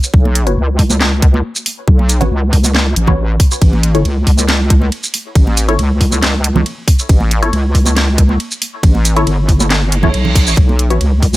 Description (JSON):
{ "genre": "deep dubstep", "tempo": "138 BPM", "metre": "4/4", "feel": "half-time", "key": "unclear", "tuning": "A4 = 440 Hz", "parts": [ { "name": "garage drum kit", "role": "drums", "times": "0.0-11.4 s", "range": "handclaps, hi-hat, ride cymbal, shaker, snare drum", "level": "-18 LUFS", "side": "equal", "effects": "none" }, { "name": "wobble bass", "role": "bass", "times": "0.1-11.4 s", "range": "G1 to C#2", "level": "-13 LUFS", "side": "equal", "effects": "chorus" }, { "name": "electronic kick drum", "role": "drums", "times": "0.1-11.3 s", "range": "none", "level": "-10 LUFS", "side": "equal", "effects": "none" }, { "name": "congas", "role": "percussion", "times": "0.3-11.4 s", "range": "none", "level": "-20 LUFS", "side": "right 3 dB", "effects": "dub echo" }, { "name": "filtered dub chord stab", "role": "stabs", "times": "0.5-11.0 s", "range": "E4 to C#5", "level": "-20 LUFS", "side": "left 3 dB", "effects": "phaser, dub echo" }, { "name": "reverse cymbal", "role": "sound effects", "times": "9.9-10.6 s", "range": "none", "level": "-21 LUFS", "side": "right 5 dB", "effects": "none" } ], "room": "little or no reverb", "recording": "none", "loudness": "-10 LUFS", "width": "side -17 dB against mid", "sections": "0.0-11.4 A section", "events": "reverse cymbal 9.9-10.6", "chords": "0.0 Bsus2; 3.6 A; 10.6 Bsus2" }